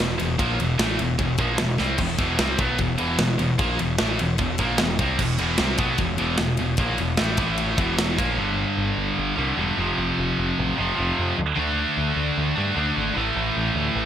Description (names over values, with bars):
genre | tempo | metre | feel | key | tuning
heavy metal | 150 BPM | 4/4 | straight | E phrygian | A4 = 444 Hz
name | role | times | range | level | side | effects
scooped high-gain guitar | riff | 0.0-14.1 s | E2 to D4 | -22 LUFS | equal | distortion
growling picked electric bass | bass | 0.0-14.1 s | E1 to G2 | -28 LUFS | equal | overdrive
tight metal drum kit | drums | 0.0-8.3 s | crash cymbal, kick drum, ride cymbal, snare drum | -25 LUFS | equal | gated reverb
room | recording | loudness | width
light reverb, studio reverb | bright 1980s-style digital production | -20 LUFS | side -10 dB against mid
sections
0.0-8.4 A section; 8.4-14.1 B section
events
drum fill 1.8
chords
0.0 E5; 7.4 A5; 7.8 E5; 8.4 G5; 9.8 F5; 11.6 D5; 13.2 A5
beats
| 0.39 0.79 1.19 1.59 | 1.99 2.39 2.79 3.19 | 3.59 3.98 4.38 4.79 | 5.18 5.58 5.98 6.38 | 6.78 7.18 7.58 7.98 | 8.38 8.78 9.18 9.58 | 9.98 10.38 10.78 11.17 | 11.57 11.97 12.37 12.77 | 13.17 13.56 13.96